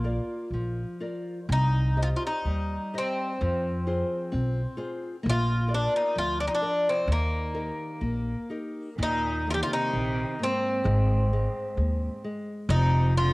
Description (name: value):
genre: fado-style ballad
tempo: 61-66 BPM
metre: 2/4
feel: rubato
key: Eb major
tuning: A4 = 441 Hz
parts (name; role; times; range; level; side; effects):
- Irish bouzouki; melody; 0.0-13.3 s; Bb3 to G4; -28 LUFS; equal; none
- nylon-string guitar; accompaniment; 0.0-13.3 s; Eb3 to Eb5; -34 LUFS; left 1 dB; cassette tape
- upright bass; bass; 0.0-13.3 s; F1 to F2; -26 LUFS; equal; none
- clear cello; second line; 9.0-13.3 s; Ab2 to Eb3; -34 LUFS; right 2 dB; cassette tape
room: light reverb, small room ambience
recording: home recording on cassette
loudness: -25 LUFS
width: side -22 dB against mid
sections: 0.0-9.0 A section; 9.0-13.3 A section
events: none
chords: 0.0 Bb; 1.5 Cm; 3.4 Fm; 5.3 Bb; 7.1 Eb; 9.0 Eb5; 10.9 Ab; 12.7 F5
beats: 0.51 | 1.48 2.45 | 3.42 4.34 | 5.26 6.17 | 7.08 8.02 | 8.99 9.93 | 10.86 11.78 | 12.70